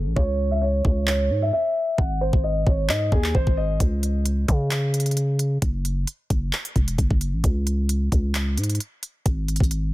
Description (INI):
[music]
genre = hip hop, trap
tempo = 132 BPM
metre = 4/4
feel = half-time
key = C# harmonic minor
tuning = A4 = 440 Hz
[part]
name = growling 808-style bass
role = bass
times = 0.0-9.9 s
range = E1 to C#3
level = -23 LUFS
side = equal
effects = none
[part]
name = dark grand piano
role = melody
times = 0.2-3.8 s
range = G#4 to F#5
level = -25 LUFS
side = equal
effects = low-pass filter, ping-pong delay
[part]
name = trap drum kit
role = drums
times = 0.2-9.8 s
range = handclaps, hi-hat, kick drum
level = -22 LUFS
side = equal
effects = none
[sound]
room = digital ambience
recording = dense, heavily limited modern master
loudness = -20 LUFS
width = side -17 dB against mid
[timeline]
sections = 0.0-9.9 A section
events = break 0.0-3.8; filter sweep on grand piano 0.0-3.8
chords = 0.2 C#m; 2.0 G#5; 3.8 N.C.; 7.4 C#5; 9.3 G#5